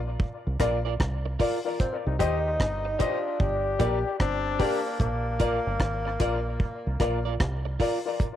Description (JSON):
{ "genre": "dub reggae", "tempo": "75 BPM", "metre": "4/4", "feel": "swing 63% on 16ths", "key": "unclear", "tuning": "A4 = 440 Hz", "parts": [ { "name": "deep dub fingered electric bass", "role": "bass", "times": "0.0-7.8 s", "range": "G1 to Eb2", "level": "-29 LUFS", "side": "right 1 dB", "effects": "tube saturation" }, { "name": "deep reggae drum kit", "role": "drums", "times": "0.2-8.4 s", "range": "hi-hat, kick drum, rim click", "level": "-28 LUFS", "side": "right 1 dB", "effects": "cassette tape" }, { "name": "electric guitar at the edge of break-up", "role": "accompaniment", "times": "0.6-8.0 s", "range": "F4 to Eb5", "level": "-35 LUFS", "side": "right 10 dB", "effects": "cassette tape, dub echo" }, { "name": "warm baby grand piano", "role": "stabs", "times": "0.6-8.2 s", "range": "F4 to Eb5", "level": "-31 LUFS", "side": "left 6 dB", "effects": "cassette tape, dub echo" }, { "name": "warm tenor saxophone", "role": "melody", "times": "1.8-7.4 s", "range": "Bb3 to Eb4", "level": "-31 LUFS", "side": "equal", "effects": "cassette tape, dub echo" }, { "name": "bright trombone", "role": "second line", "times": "2.1-4.8 s", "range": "D4 to G4", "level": "-34 LUFS", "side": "left 8 dB", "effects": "cassette tape, dub echo" } ], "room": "light reverb", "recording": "home recording on cassette", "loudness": "-24 LUFS", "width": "side -11 dB against mid", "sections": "0.0-8.4 A section", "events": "break 0.0-1.8", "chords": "0.0 Bb; 1.8 Cm; 3.4 Gm; 5.0 Bb" }